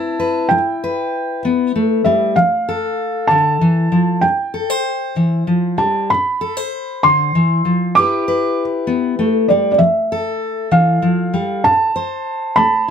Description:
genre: folk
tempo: 65 BPM (dotted quarters)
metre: 6/8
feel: straight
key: A minor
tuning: A4 = 443 Hz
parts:
  - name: felt-muted upright piano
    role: melody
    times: 0.0-12.9 s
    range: D5 to D6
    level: -16 LUFS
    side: right 2 dB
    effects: none
  - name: fingerpicked steel-string acoustic guitar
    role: accompaniment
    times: 0.0-12.9 s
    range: A2 to C5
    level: -17 LUFS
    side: left 2 dB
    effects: none
room: light reverb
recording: close, detailed microphones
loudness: -14 LUFS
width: side -7 dB against mid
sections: 0.0-12.9 A section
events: none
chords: 0.0 Amadd9; 0.5 Em/G; 2.4 F; 4.2 Gsus4; 6.1 Amadd9; 7.9 Em7/G; 9.8 Fadd9; 11.6 Am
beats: | 0.51 1.44 | 2.38 3.31 | 4.24 5.16 | 6.09 7.02 | 7.95 8.87 | 9.80 10.72 | 11.65 12.57

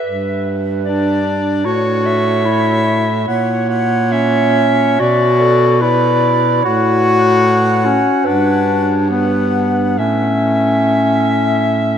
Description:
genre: classical, lyrical piece for single-reed quartet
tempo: 72 BPM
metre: 4/4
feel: uneven beats, rubato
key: unclear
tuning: A4 = 440 Hz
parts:
  - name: clear soprano saxophone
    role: melody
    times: 0.0-12.0 s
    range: C#5 to F#5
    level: -20 LUFS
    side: left 5 dB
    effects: none
  - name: mellow clarinet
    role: second line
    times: 0.0-12.0 s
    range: A4 to E5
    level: -20 LUFS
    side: right 4 dB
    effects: none
  - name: dark baritone saxophone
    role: bass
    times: 0.1-12.0 s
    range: G2 to B2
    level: -18 LUFS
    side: right 2 dB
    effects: none
  - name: warm clarinet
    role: accompaniment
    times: 0.8-12.0 s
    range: B3 to F#4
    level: -16 LUFS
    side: left 2 dB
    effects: none
room: wet cathedral reverb, RT60 5.0 s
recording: in a vast, echoing space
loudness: -12 LUFS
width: side -8 dB against mid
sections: 0.0-12.0 A section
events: none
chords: 0.1 Em7/G; 1.7 A6; 3.3 F#7/A#; 5.0 Bm; 6.6 F#m/A; 8.3 Gmaj7; 10.0 A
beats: | 0.05 0.85 1.66 2.47 | 3.27 4.11 5.00 5.81 | 6.64 7.45 8.26 9.11 | 9.99 10.88 11.77

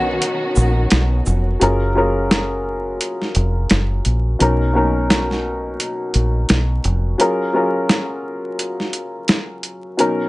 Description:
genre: hip hop, boom-bap hip-hop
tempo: 86 BPM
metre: 4/4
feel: swing 59% on 16ths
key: F# major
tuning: A4 = 438 Hz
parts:
  - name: dark upright piano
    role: accompaniment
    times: 0.0-10.3 s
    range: B2 to A#4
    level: -20 LUFS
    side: left 1 dB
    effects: high-pass filter, low-pass filter
  - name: dark studio string section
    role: sustained chords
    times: 0.0-1.6 s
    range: D#3 to F#4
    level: -23 LUFS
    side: equal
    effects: high-pass filter, low-pass filter
  - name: deep dub fingered electric bass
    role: bass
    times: 0.0-7.1 s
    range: E#1 to B1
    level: -18 LUFS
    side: equal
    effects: none
  - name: boom bap sampler-style drum kit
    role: drums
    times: 0.2-10.2 s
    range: hi-hat, shaker, snare drum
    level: -18 LUFS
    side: equal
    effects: overdrive
room: light reverb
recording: vinyl crackle, nothing above 10.7 kHz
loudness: -16 LUFS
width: side -20 dB against mid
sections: 0.0-1.6 A section; 1.6-10.3 B section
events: break 0.0-1.6; kick muted 1.6-10.3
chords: 0.0 Bmaj7; 1.6 F#maj7; 4.4 Bmaj7; 7.2 F#maj7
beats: 0.21 0.91 | 1.61 2.30 3.00 3.70 | 4.40 5.09 5.79 6.49 | 7.19 7.89 8.58 9.28 | 9.98

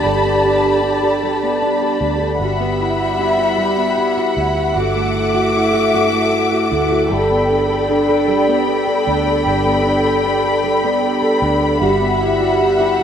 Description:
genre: pop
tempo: 51 BPM (dotted quarters)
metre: 6/8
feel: straight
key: G major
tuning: A4 = 441 Hz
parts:
  - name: fingerpicked plugged-in steel-string acoustic guitar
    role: accompaniment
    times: 0.0-13.0 s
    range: G2 to A4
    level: -18 LUFS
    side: right 1 dB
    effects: double-tracked left and right
  - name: warm studio string section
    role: sustained chords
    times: 0.0-13.0 s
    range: G3 to D6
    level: -16 LUFS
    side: left 1 dB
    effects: none
  - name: vintage muted fingered electric bass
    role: bass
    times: 0.0-13.0 s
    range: G1 to D2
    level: -25 LUFS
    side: equal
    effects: none
room: wet lush hall reverb, RT60 2.7 s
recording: rough home demo mix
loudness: -14 LUFS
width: side -8 dB against mid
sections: 0.0-13.0 A section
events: none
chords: 0.0 Gadd9; 2.4 Emadd9/G; 4.8 Dadd9/G; 7.1 Gadd9; 11.8 Emadd9/G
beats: | 0.05 1.23 | 2.40 3.58 | 4.76 5.94 | 7.11 8.29 | 9.46 10.64 | 11.82 12.99

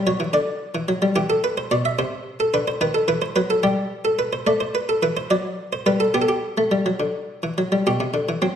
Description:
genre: classical, baroque-style two-part invention for harpsichord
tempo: 72 BPM (dotted quarters)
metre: 6/8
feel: straight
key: G major from 4.5 s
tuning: A4 = 440 Hz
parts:
  - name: buff-stop harpsichord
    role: solo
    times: 0.0-8.6 s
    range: B2 to E5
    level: -19 LUFS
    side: equal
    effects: none
room: wet recital hall reverb, RT60 1.4 s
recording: none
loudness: -19 LUFS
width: side -8 dB against mid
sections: 0.0-4.5 A section; 4.5-7.9 B section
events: none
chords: 0.3 Dadd9; 1.2 Em; 2.0 Am/C; 2.8 B7/D#; 3.6 Gadd9; 4.5 Am; 5.3 D7/F#; 6.1 G; 7.9 G/B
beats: 0.34 | 1.16 1.98 | 2.81 3.63 | 4.46 5.30 | 6.15 7.00 | 7.86

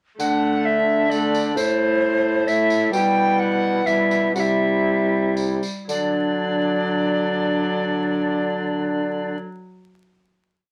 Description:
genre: classical, renaissance-style consort dance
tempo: 113-132 BPM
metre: 3/4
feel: straight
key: D mixolydian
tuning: A4 = 439 Hz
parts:
  - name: tenor recorder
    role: melody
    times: 0.2-9.4 s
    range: C5 to G5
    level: -24 LUFS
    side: equal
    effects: none
  - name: bass recorder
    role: second line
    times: 0.2-9.4 s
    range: D4 to F#4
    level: -28 LUFS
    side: equal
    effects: none
  - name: warm viola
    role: accompaniment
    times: 0.2-9.4 s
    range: F#3 to A3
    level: -28 LUFS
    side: equal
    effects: none
  - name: mellow bassoon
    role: bass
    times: 0.2-9.4 s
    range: A2 to D3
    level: -27 LUFS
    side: equal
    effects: none
  - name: tambourine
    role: percussion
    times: 0.2-6.1 s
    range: none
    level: -37 LUFS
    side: equal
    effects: none
room: moderate studio reverb, RT60 0.5 s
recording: vinyl crackle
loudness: -21 LUFS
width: mono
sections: 0.2-5.9 A section; 5.9-9.1 final chord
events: slowing down 2.3-5.9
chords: 0.2 D; 1.6 Am; 2.9 Em/B; 4.4 C; 5.9 D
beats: | 0.20 0.66 1.11 | 1.57 2.02 2.48 | 2.93 3.40 3.87 | 4.36 4.86 5.37 | 5.89 6.42 6.95 | 7.47 8.00 8.53

